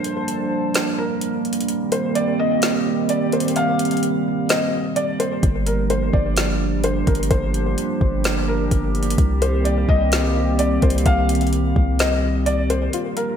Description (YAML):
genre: hip hop, atmospheric cloud-rap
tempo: 128 BPM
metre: 4/4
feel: half-time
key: unclear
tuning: A4 = 443 Hz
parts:
  - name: felt-muted upright piano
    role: melody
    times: 0.0-13.4 s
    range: Bb4 to F5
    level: -24 LUFS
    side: left 2 dB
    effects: low-pass filter, ping-pong delay
  - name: dark analog pad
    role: sustained chords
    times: 0.0-13.4 s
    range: Eb3 to A5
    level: -22 LUFS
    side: right 2 dB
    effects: lush chorus, sidechain pumping
  - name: smooth R&B drum kit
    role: drums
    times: 0.0-13.3 s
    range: hi-hat, kick drum, snare drum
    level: -22 LUFS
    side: equal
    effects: gated reverb
  - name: long sustained 808-style bass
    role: bass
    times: 5.4-12.9 s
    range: G1 to C2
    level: -21 LUFS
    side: equal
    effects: none
  - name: soft round pluck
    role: arpeggios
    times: 12.9-13.4 s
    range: F4 to F5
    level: -28 LUFS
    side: left 9 dB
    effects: chorus, low-pass filter, ping-pong delay
room: moderate lush hall reverb, RT60 1.8 s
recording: bright 1980s-style digital production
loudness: -17 LUFS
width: side -8 dB against mid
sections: 0.0-13.4 A section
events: break 0.0-5.4, 12.9-13.4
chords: 0.0 Gm7; 1.7 Cm7; 5.4 Gm7; 9.2 Cm7